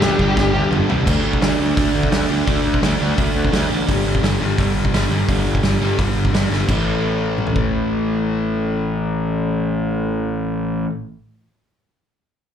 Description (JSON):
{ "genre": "punk rock", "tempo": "171 BPM", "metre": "4/4", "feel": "straight", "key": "unclear", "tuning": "A4 = 440 Hz", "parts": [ { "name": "biting lead guitar", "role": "melody", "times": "0.0-0.7 s", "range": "G4 to G5", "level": "-23 LUFS", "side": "left 1 dB", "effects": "overdrive, slapback echo, tape echo" }, { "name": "crunchy overdriven guitar", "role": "riff", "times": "0.0-10.9 s", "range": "G2 to D4", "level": "-24 LUFS", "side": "left 13 dB", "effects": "slapback echo" }, { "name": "crunchy overdriven guitar", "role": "riff", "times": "0.0-10.9 s", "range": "G2 to D4", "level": "-23 LUFS", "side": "right 10 dB", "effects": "slapback echo" }, { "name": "distorted electric guitar", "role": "riff", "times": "0.0-1.1 s", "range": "G2 to D4", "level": "-25 LUFS", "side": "equal", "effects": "distortion, slapback echo" }, { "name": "fuzz picked electric bass", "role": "bass", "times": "0.0-10.9 s", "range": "G1 to D2", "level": "-21 LUFS", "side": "left 1 dB", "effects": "overdrive" }, { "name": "loose indie drum kit", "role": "drums", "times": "0.0-7.6 s", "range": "crash cymbal, hi-hat, kick drum, snare drum, toms", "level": "-21 LUFS", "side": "equal", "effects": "none" } ], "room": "little or no reverb", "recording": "live gig heard through the venue's PA, club reverb", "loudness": "-16 LUFS", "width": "side -8 dB against mid", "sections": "0.0-1.1 A section; 1.1-6.7 B section; 6.7-9.5 C section", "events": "drum fill 0.4-1.1, 6.5", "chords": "0.0 G; 1.1 D5; 3.9 G5; 6.7 A5", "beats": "0.01 0.37 0.72 | 1.07 1.42 1.77 2.12 | 2.47 2.82 3.17 3.52 | 3.88 4.23 4.58 4.93 | 5.28 5.63 5.98 6.33 | 6.68 7.03 7.38 7.73 | 8.08 8.43 8.79 9.14" }